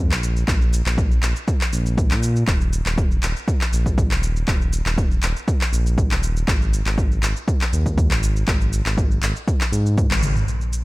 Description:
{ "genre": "afro house", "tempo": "120 BPM", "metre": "4/4", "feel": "straight", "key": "unclear", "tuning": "A4 = 440 Hz", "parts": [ { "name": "smooth synth bass", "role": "bass", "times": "0.0-10.8 s", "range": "Eb1 to Bb2", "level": "-21 LUFS", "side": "equal", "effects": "sidechain pumping" }, { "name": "afro-pop drum kit", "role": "drums", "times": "0.1-10.8 s", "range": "handclaps, shaker, toms", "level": "-26 LUFS", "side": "equal", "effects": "none" }, { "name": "electronic kick drum", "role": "drums", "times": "0.5-10.1 s", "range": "none", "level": "-20 LUFS", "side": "equal", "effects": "overdrive" } ], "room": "digital ambience", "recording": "echo-heavy mix", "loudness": "-18 LUFS", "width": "side -21 dB against mid", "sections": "0.0-10.5 A section", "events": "drum fill 10.1-10.5; band accent 10.1", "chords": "none" }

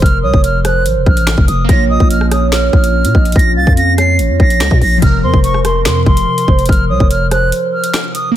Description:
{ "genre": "hip hop, drill", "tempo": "144 BPM", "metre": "4/4", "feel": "half-time", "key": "unclear", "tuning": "A4 = 439 Hz", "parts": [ { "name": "silver concert flute", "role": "melody", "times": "0.0-8.3 s", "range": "C6 to C7", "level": "-17 LUFS", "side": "right 1 dB", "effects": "low-pass filter, digital delay" }, { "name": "glassy digital keys", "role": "accompaniment", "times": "0.0-8.4 s", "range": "C3 to Db5", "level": "-21 LUFS", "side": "equal", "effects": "chorus, low-pass filter" }, { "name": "warbly tape-like pad", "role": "sustained chords", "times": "0.0-8.3 s", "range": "C3 to Bb4", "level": "-22 LUFS", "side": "left 2 dB", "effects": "chorus, built-in reverb" }, { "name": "growling 808-style bass", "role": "bass", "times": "0.0-7.5 s", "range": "F1 to Bb2", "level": "-14 LUFS", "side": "equal", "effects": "none" }, { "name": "drill drum kit", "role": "drums", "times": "0.0-8.2 s", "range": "finger snaps, hi-hat, kick drum, rim click, snare drum", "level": "-13 LUFS", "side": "equal", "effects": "none" }, { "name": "hollow clarinet-like synth lead", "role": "second line", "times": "0.2-7.9 s", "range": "Bb4 to F5", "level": "-20 LUFS", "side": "right 8 dB", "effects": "chorus, digital delay" } ], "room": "little or no reverb", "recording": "dense, heavily limited modern master", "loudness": "-9 LUFS", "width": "side -12 dB against mid", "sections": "0.0-8.4 A section", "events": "break 7.5-8.4", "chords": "0.0 Fsus4; 1.7 Bbm; 5.0 Fsus4" }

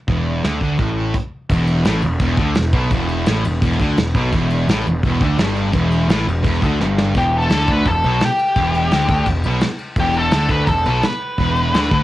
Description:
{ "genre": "garage rock duo or trio", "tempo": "170 BPM", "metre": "4/4", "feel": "straight", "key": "E minor", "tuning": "A4 = 440 Hz", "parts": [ { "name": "thick fuzz guitar", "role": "riff", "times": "0.1-12.0 s", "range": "E2 to D3", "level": "-20 LUFS", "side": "equal", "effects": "distortion, cassette tape" }, { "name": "fuzz picked electric bass", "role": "bass", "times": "0.1-12.0 s", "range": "E1 to D2", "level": "-19 LUFS", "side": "equal", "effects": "overdrive" }, { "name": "soft brush drum kit", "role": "drums", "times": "0.1-12.0 s", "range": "crash cymbal, hi-hat, kick drum, ride cymbal, snare drum", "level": "-21 LUFS", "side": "equal", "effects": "none" }, { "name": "octave-fuzz lead guitar", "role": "melody", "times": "7.2-12.0 s", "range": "G4 to B4", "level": "-18 LUFS", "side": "left 1 dB", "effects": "distortion" } ], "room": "light reverb", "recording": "home recording on cassette", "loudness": "-15 LUFS", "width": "side -15 dB against mid", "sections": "0.0-1.5 A section; 1.5-7.2 B section; 7.2-12.0 C section", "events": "stop 1.1-1.5; drum fill 6.8-7.2; lead electric guitar solo 7.2-12.0", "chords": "0.0 E5; 1.5 Em; 7.2 E5" }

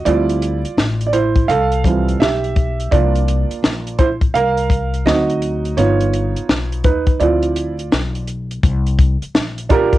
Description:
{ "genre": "hip hop, jazz-hop", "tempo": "84 BPM", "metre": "4/4", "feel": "swing 64% on 16ths", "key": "D minor", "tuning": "A4 = 442 Hz", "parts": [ { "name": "warm grand piano", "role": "accompaniment", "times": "0.0-10.0 s", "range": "E3 to F5", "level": "-17 LUFS", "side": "right 4 dB", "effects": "cassette tape" }, { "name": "upright bass", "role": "bass", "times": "0.0-10.0 s", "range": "G1 to D#2", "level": "-20 LUFS", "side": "left 2 dB", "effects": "transformer saturation" }, { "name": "compact cocktail drum kit", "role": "drums", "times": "0.1-10.0 s", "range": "hi-hat, kick drum, snare drum", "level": "-16 LUFS", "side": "left 1 dB", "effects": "cassette tape" } ], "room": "light reverb", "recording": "home recording on cassette", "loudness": "-14 LUFS", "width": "side -15 dB against mid", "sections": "0.0-8.6 A section; 8.6-10.0 B section", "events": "grand piano solo 0.0-8.6; break 7.2-8.6", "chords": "0.1 Dm11; 2.9 C7sus4; 5.1 D7b9; 5.8 Gaug7; 7.2 Dm9; 8.6 C7sus4" }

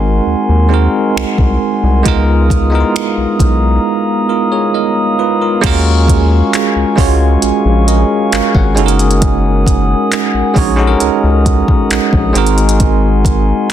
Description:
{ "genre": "contemporary R&B", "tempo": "67 BPM", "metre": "4/4", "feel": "straight", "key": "Eb minor", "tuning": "A4 = 440 Hz", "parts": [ { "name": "bell-like tine electric piano", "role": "accompaniment", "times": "0.0-13.7 s", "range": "Ab3 to Gb5", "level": "-14 LUFS", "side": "right 1 dB", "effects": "slow stereo tremolo" }, { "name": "glass harmonica", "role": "sustained chords", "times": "0.0-13.7 s", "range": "Cb4 to Eb6", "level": "-18 LUFS", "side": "right 1 dB", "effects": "none" }, { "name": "round analog bass", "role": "bass", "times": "0.0-13.5 s", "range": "Gb1 to Eb2", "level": "-12 LUFS", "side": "equal", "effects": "none" }, { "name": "smooth R&B drum kit", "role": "drums", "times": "1.2-13.7 s", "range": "crash cymbal, finger snaps, handclaps, hi-hat, kick drum", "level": "-15 LUFS", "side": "equal", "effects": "soft clipping on snare" } ], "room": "digital ambience", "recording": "dense, heavily limited modern master", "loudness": "-9 LUFS", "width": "side -11 dB against mid", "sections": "0.0-5.6 A section; 5.6-13.7 B section", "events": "none", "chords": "0.0 Ab9; 2.1 Db13; 5.6 Ebm11; 8.8 Gb69; 12.4 Ab9" }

